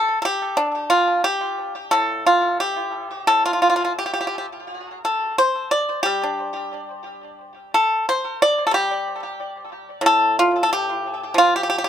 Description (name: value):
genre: chinese traditional, Chinese solo plucked strings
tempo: 90 BPM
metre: 4/4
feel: rubato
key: unclear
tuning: A4 = 442 Hz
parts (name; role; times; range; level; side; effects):
- pipa; solo; 0.0-11.9 s; A2 to D5; -18 LUFS; equal; tape echo
room: moderate small room reverb, RT60 0.6 s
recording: none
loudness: -18 LUFS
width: side -10 dB against mid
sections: 0.0-11.9 A section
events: none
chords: none